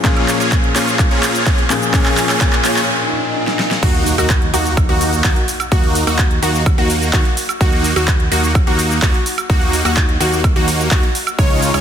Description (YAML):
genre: EDM, festival progressive house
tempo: 127 BPM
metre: 4/4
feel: straight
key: Eb minor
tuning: A4 = 439 Hz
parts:
  - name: felt-muted upright piano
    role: accompaniment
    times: 0.0-3.9 s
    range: Bb2 to Ab4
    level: -20 LUFS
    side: left 5 dB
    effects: sidechain pumping, ping-pong delay
  - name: supersaw chords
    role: riff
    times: 0.0-11.8 s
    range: Ab3 to Db5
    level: -19 LUFS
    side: equal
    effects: sidechain pumping, ping-pong delay
  - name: big-room dance drum kit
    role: drums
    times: 0.0-11.8 s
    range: crash cymbal, handclaps, hi-hat, shaker, snare drum, woodblock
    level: -20 LUFS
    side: right 1 dB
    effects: overdrive, studio reverb
  - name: electronic kick drum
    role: drums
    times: 0.0-11.5 s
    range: none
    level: -15 LUFS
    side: equal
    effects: overdrive, studio reverb
  - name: riser, swell and impact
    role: sound effects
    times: 0.0-5.7 s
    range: none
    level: -26 LUFS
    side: right 1 dB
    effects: none
  - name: wide unison pluck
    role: arpeggios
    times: 3.8-11.8 s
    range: Gb4 to Db5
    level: -22 LUFS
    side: equal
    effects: sidechain pumping, ping-pong delay
  - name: fat analog bass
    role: bass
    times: 3.8-11.8 s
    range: Db2 to Eb2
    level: -20 LUFS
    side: equal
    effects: sidechain pumping
room: light reverb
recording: dense, heavily limited modern master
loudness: -12 LUFS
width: side -9 dB against mid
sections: 0.0-3.8 A section; 3.8-11.8 B section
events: build-up 0.0-3.8; drum fill 0.0-2.9, 3.5-3.8; riser 0.0-3.8; break 2.9-3.8; swell 2.9-3.8; drop 3.8-11.8; impact 3.8-5.7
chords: 0.0 Bbm7; 3.8 Ebm